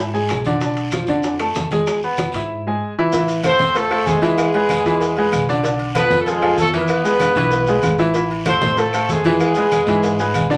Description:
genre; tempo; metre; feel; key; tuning
latin, salsa; 191 BPM; 4/4; straight; A harmonic minor; A4 = 441 Hz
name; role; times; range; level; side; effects
clear grand piano; accompaniment; 0.0-10.6 s; D3 to E6; -21 LUFS; equal; none
upright bass; bass; 0.0-10.6 s; A1 to A2; -30 LUFS; equal; none
bongos and cowbell; percussion; 0.0-10.5 s; none; -32 LUFS; equal; none
congas; percussion; 0.1-10.6 s; none; -28 LUFS; equal; none
maracas; percussion; 0.1-10.6 s; none; -39 LUFS; equal; none
claves; percussion; 0.3-10.5 s; none; -36 LUFS; equal; none
guiro; percussion; 0.3-10.6 s; none; -37 LUFS; equal; none
timbales and agogo bells; percussion; 0.3-10.5 s; none; -30 LUFS; equal; none
mellow horn section; melody; 3.5-10.5 s; G#3 to C5; -20 LUFS; equal; none
room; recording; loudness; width
wet studio ambience, RT60 0.5 s; none; -18 LUFS; mono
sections
0.0-3.1 A section; 3.1-10.6 B section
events
drum fill 7.2-8.1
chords
0.0 E7; 0.6 Bm7b5; 1.9 E; 3.1 Am; 4.4 E7; 5.6 Bm7b5; 6.9 E; 8.1 Am; 9.4 E7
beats
0.30 | 0.61 0.93 1.24 1.55 | 1.87 2.18 2.50 2.81 | 3.12 3.44 3.75 4.07 | 4.38 4.69 5.01 5.32 | 5.64 5.95 6.26 6.58 | 6.89 7.21 7.52 7.83 | 8.15 8.46 8.78 9.09 | 9.40 9.72 10.03 10.35

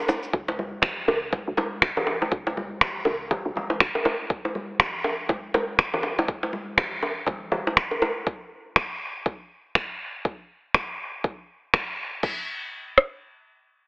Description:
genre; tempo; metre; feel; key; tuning
afro house; 121 BPM; 4/4; swing 60% on 16ths; unclear; A4 = 440 Hz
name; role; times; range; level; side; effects
bongos; percussion; 0.1-8.1 s; none; -26 LUFS; equal; none
woody FM bass; bass; 0.3-3.9 s; Ab1 to Db2; -31 LUFS; equal; sidechain pumping
afro-pop drum kit; drums; 0.3-13.1 s; kick drum, rim click; -23 LUFS; equal; overdrive
congas; percussion; 0.6-7.6 s; none; -33 LUFS; equal; none
afro-pop drum kit; drums; 0.8-12.3 s; crash cymbal, finger snaps; -24 LUFS; equal; overdrive
room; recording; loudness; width
moderate plate reverb, RT60 1.7 s; heavily compressed radio sound, multiband compression, telephone sound; -23 LUFS; side -24 dB against mid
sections
0.0-12.2 A section; 12.2-13.9 B section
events
none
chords
none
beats
| 0.33 0.83 1.32 1.82 | 2.31 2.81 3.31 3.80 | 4.30 4.79 5.29 5.79 | 6.28 6.78 7.27 7.77 | 8.27 8.76 9.26 9.75 | 10.25 10.74 11.24 11.74 | 12.23 12.73

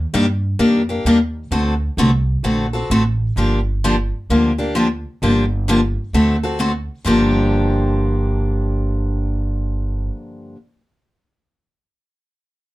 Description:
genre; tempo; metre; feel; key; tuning
acoustic string swing (jazz manouche); 130 BPM; 4/4; swing 63% on 8ths; G minor; A4 = 440 Hz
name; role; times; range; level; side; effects
upright bass; bass; 0.0-10.1 s; G1 to G2; -20 LUFS; right 1 dB; none
picked steel-string acoustic guitar; accompaniment; 0.1-10.6 s; G2 to A4; -17 LUFS; left 1 dB; none
room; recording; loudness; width
moderate studio ambience, RT60 0.5 s; dark, warm production; -16 LUFS; side -17 dB against mid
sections
0.0-7.1 A section; 7.1-10.8 B section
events
none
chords
0.0 Ebmaj7; 1.5 D7; 3.4 Gm7; 6.1 D7; 7.1 Gm7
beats
0.13 0.60 1.06 | 1.52 1.98 2.44 2.90 | 3.37 3.83 4.29 4.75 | 5.21 5.67 6.14 6.60 | 7.06 7.52 7.98 8.44 | 8.90 9.37 9.83 10.29

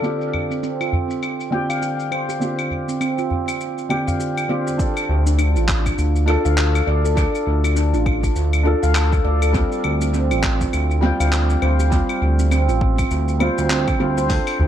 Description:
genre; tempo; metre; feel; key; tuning
organic downtempo; 101 BPM; 4/4; swing 59% on 16ths; unclear; A4 = 442 Hz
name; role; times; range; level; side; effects
felt-muted upright piano; accompaniment; 0.0-14.7 s; D3 to A4; -25 LUFS; right 2 dB; sidechain pumping, dub echo
dusty soul sampler-style drum kit; drums; 0.0-14.6 s; claves, handclaps, hi-hat, shaker; -27 LUFS; left 2 dB; dub echo
udu; percussion; 0.3-4.2, 14.6-14.7 s; none; -24 LUFS; equal; none
handpan; arpeggios; 0.5-14.3 s; C4 to G5; -23 LUFS; equal; tape echo
electronic kick drum; drums; 4.8-14.4 s; none; -22 LUFS; equal; none
smooth synth bass; bass; 5.1-14.7 s; A1 to D2; -18 LUFS; equal; none
room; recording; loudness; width
light reverb; echo-heavy mix, low-pass filter; -17 LUFS; side -10 dB against mid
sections
0.0-4.8 A section; 4.8-14.7 B section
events
filter sweep on handpan 0.0-4.8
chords
0.0 Csus4/D; 4.8 Dm; 9.5 Csus4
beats
| 0.04 0.63 1.23 1.82 | 2.42 3.01 3.60 4.20 | 4.79 5.39 5.98 6.57 | 7.17 7.76 8.36 8.95 | 9.54 10.14 10.73 11.33 | 11.92 12.52 13.11 13.70 | 14.30

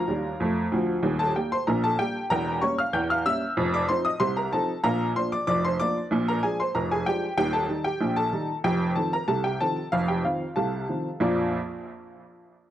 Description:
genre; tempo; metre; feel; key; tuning
ragtime piano; 94 BPM; 2/4; straight; Bb major; A4 = 441 Hz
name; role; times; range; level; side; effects
warm upright piano; solo; 0.0-11.6 s; Eb1 to G6; -23 LUFS; equal; analog delay
room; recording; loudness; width
moderate small room ambience, RT60 0.5 s; cassette tape; -23 LUFS; side -11 dB against mid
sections
0.0-11.2 A section; 11.2-12.5 B section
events
none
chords
0.0 Bb; 1.0 Eb; 2.3 Edim7; 3.6 F7; 4.8 Bb; 6.1 Bb7; 7.4 Eb; 8.7 F7; 11.2 Bb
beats
0.39 | 1.03 1.66 | 2.29 2.93 | 3.57 4.20 | 4.84 5.47 | 6.11 6.75 | 7.38 8.02 | 8.65 9.29 | 9.93 10.57 | 11.22

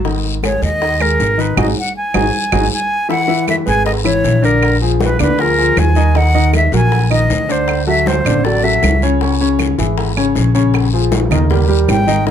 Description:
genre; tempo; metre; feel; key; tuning
Afro-Cuban jazz; 157 BPM; 4/4; straight; unclear; A4 = 440 Hz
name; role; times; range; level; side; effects
warm baby grand piano; accompaniment; 0.0-12.3 s; C#3 to E5; -17 LUFS; left 2 dB; none
upright bass; bass; 0.0-12.3 s; G#1 to D#2; -16 LUFS; equal; none
congas; percussion; 0.0-12.3 s; none; -24 LUFS; equal; none
bongos; percussion; 0.1-12.3 s; none; -26 LUFS; left 5 dB; none
guiro; percussion; 0.1-12.3 s; none; -28 LUFS; left 7 dB; none
breathy silver concert flute; melody; 0.4-9.0, 11.9-12.3 s; A#4 to G#5; -16 LUFS; equal; none
claves; percussion; 0.4-12.1 s; none; -23 LUFS; right 9 dB; none
room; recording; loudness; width
light reverb; close, detailed microphones; -12 LUFS; side -9 dB against mid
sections
0.0-3.1 A section; 3.1-12.3 B section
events
band accent 1.6-3.1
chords
0.0 G#5; 3.1 C#m7; 4.6 A#7; 6.2 D#m; 7.7 D9; 9.2 C#m; 10.7 A#m7; 11.5 D#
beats
| 0.04 0.42 0.81 1.19 | 1.57 1.95 2.33 2.72 | 3.10 3.48 3.86 4.24 | 4.62 5.01 5.39 5.77 | 6.15 6.53 6.92 7.30 | 7.68 8.06 8.44 8.83 | 9.21 9.59 9.97 10.35 | 10.74 11.12 11.50 11.88 | 12.26

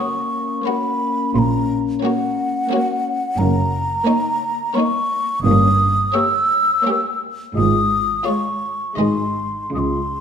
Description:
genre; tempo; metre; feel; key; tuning
classical, slow romantic movement for symphony orchestra; 86 BPM; 3/4; rubato; F# major, Db major from 3.4 s; A4 = 440 Hz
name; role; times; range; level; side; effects
bright symphonic violin section; melody; 0.0-9.5 s; C#5 to Eb5; -30 LUFS; left 4 dB; none
mellow hollow wooden flute; second line; 0.0-10.2 s; F#5 to E6; -20 LUFS; equal; none
rich chamber violin section; second line; 0.0-9.6 s; Eb4 to Ab4; -29 LUFS; left 2 dB; none
rich symphonic viola section; accompaniment; 0.0-9.5 s; Ab3 to A#3; -24 LUFS; right 1 dB; none
mellow French horn section; sustained chords; 0.0-10.0 s; Ab3 to F4; -24 LUFS; left 6 dB; none
clear studio double bass section; bass; 1.3-10.2 s; Gb1 to Db2; -23 LUFS; right 3 dB; none
clear symphonic cello section; bass; 1.3-10.2 s; Gb2 to Db3; -22 LUFS; right 3 dB; none
room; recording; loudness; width
wet recital hall reverb, RT60 1.6 s; none; -16 LUFS; side -7 dB against mid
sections
0.0-10.2 A section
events
none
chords
0.0 F#; 3.4 Ebm7/Gb; 5.4 Gdim7; 7.6 Db/Ab; 9.0 Ab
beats
0.65 | 1.34 2.03 2.71 | 3.38 4.07 4.76 | 5.45 6.15 6.85 | 7.56 8.25 8.97 | 9.74

